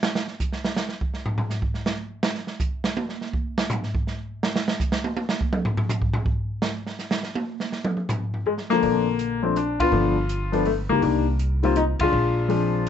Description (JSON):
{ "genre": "jazz piano trio", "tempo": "164 BPM", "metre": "3/4", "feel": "swing 66% on 8ths", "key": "Bb major", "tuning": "A4 = 441 Hz", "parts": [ { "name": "open jazz drum kit", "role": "drums", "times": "0.0-12.9 s", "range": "hi-hat, kick drum, ride cymbal, snare drum, toms", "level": "-25 LUFS", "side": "right 2 dB", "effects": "none" }, { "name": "warm grand piano", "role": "melody", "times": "8.5-12.9 s", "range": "D3 to F4", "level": "-21 LUFS", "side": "left 4 dB", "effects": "none" }, { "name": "upright bass", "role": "bass", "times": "8.8-12.9 s", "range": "G1 to Db2", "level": "-25 LUFS", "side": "right 1 dB", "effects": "none" } ], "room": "light reverb", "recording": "nothing above 8.0 kHz", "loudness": "-22 LUFS", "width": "side -9 dB against mid", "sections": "0.0-8.8 A section; 8.8-12.9 B section", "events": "drum solo 0.0-8.8; band accent 9.7, 11.9", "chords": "0.0 N.C.; 8.8 Bbmaj9; 9.9 G7; 11.0 Cm7; 12.1 Bb7", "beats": "| 0.04 0.41 0.77 | 1.14 1.50 1.87 | 2.24 2.60 2.97 | 3.33 3.70 4.07 | 4.43 4.80 5.16 | 5.53 5.89 6.26 | 6.63 6.99 7.36 | 7.72 8.09 8.46 | 8.82 9.19 9.56 | 9.93 10.29 10.66 | 11.03 11.39 11.76 | 12.13 12.49 12.86" }